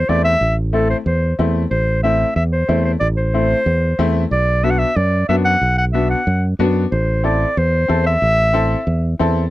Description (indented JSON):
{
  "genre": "latin, cumbia",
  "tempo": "184 BPM",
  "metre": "4/4",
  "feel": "straight",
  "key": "A dorian",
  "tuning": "A4 = 440 Hz",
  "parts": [
    { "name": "clear clarinet", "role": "melody", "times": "0.0-9.2 s", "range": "A4 to F#5", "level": "-18 LUFS", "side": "equal", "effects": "none" },
    { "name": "fingered electric bass", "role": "bass", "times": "0.0-9.5 s", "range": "A1 to F#2", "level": "-17 LUFS", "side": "right 1 dB", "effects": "none" },
    { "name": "bright upright piano", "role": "accompaniment", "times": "0.1-9.4 s", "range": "A3 to A4", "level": "-20 LUFS", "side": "left 3 dB", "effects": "none" }
  ],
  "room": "little or no reverb",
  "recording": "dry, close 1970s-style studio recording",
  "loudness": "-14 LUFS",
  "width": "side -16 dB against mid",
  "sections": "0.0-9.5 A section",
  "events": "none",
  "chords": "0.0 Am; 4.3 Bm; 6.9 Am"
}